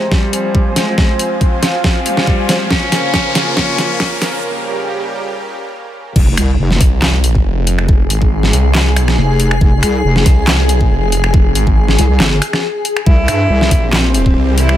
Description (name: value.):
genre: heavy wobble dubstep.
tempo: 139 BPM.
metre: 4/4.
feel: swing 53% on 16ths, half-time.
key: F harmonic minor.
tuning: A4 = 443 Hz.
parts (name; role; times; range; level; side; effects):
warm cello; melody; 0.0-4.4, 13.1-14.8 s; G3 to E4; -20 LUFS; equal; low-pass filter, dub echo.
supersaw pad; sustained chords; 0.0-6.1, 13.1-14.8 s; Db3 to Ab5; -22 LUFS; right 2 dB; sidechain pumping, low-pass filter.
riser and impact; sound effects; 0.7-7.9 s; none; -23 LUFS; equal; none.
granular cloud pad; texture; 0.0-14.8 s; F4 to Ab5; -21 LUFS; left 2 dB; built-in reverb, sidechain pumping.
dubstep drum kit; drums; 0.1-14.8 s; crash cymbal, finger snaps, handclaps, hi-hat, snare drum; -16 LUFS; equal; overdrive.
electronic kick drum; drums; 0.1-14.3 s; none; -12 LUFS; equal; overdrive.
wobble bass; bass; 6.2-13.7 s; F1 to G2; -13 LUFS; equal; chorus, overdrive.
snarling distorted saw bass; bass; 6.8-14.8 s; F1 to C2; -13 LUFS; equal; overdrive.
room: little or no reverb.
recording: high-pass filter.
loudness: -11 LUFS.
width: side -12 dB against mid.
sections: 0.0-6.2 A section; 6.2-14.8 B section.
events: build-up 0.0-6.2; drum fill 0.0-4.4; filter sweep on supersaw synth 0.0-6.2; filter sweep on cello 0.0-6.2; riser 0.7-4.4; break 4.4-6.2; drop 6.2-14.8; impact 6.2-7.9.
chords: 0.0 Fm; 2.7 Bbm; 4.4 Gdim; 6.2 Fm; 13.1 C.